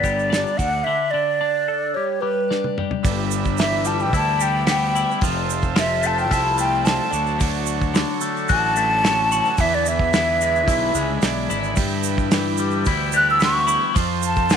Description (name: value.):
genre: psychedelic rock.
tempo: 110 BPM.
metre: 4/4.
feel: straight.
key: unclear.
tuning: A4 = 440 Hz.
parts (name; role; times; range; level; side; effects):
breathy mellow concert flute; melody; 0.0-14.6 s; B4 to F#6; -20 LUFS; right 1 dB; slapback echo.
twelve-string electric guitar; riff; 0.0-14.6 s; E2 to B4; -25 LUFS; left 13 dB; phaser.
fuzz fingered electric bass; bass; 0.0-14.6 s; F1 to G2; -26 LUFS; right 1 dB; overdrive.
damped 70s drum kit; drums; 0.0-14.6 s; hi-hat, kick drum, snare drum, toms; -24 LUFS; right 1 dB; none.
tube shaker; percussion; 0.0-14.6 s; none; -32 LUFS; right 22 dB; none.
combo organ; sustained chords; 3.0-14.6 s; D3 to E5; -27 LUFS; right 12 dB; none.
room: light reverb, small room ambience.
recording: 1960s-style stereo with parts hard left and right.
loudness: -18 LUFS.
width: side -7 dB against mid.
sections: 0.0-3.0 A section; 3.0-14.6 B section.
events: drum fill 2.5-3.0; flute solo 3.0-14.6.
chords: 0.0 G; 0.6 D5; 1.9 G; 3.0 G6; 5.2 Fmaj7; 7.1 Dmaj7; 9.6 E7; 11.8 G6; 14.0 F.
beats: 0.31 | 0.86 1.40 1.95 2.50 | 3.04 3.59 4.13 4.68 | 5.23 5.77 6.32 6.86 | 7.41 7.95 8.50 9.04 | 9.59 10.14 10.68 11.23 | 11.78 12.32 12.87 13.41 | 13.96 14.51.